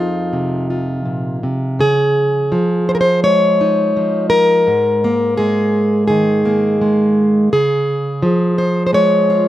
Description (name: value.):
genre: folk, solo fingerstyle acoustic guitar.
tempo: 84 BPM.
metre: 4/4.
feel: rubato.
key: unclear.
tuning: A4 = 443 Hz.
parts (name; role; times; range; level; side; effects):
fingerpicked plugged-in steel-string acoustic guitar; solo; 0.0-9.5 s; F2 to Db5; -13 LUFS; equal; none.
room: little or no reverb.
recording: recorded outdoors, with no room sound.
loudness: -13 LUFS.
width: side -14 dB against mid.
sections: 0.0-1.8 A section; 1.8-9.5 B section.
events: none.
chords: 0.0 Fm7; 1.8 Dbadd9; 4.7 Absus2; 7.5 Db.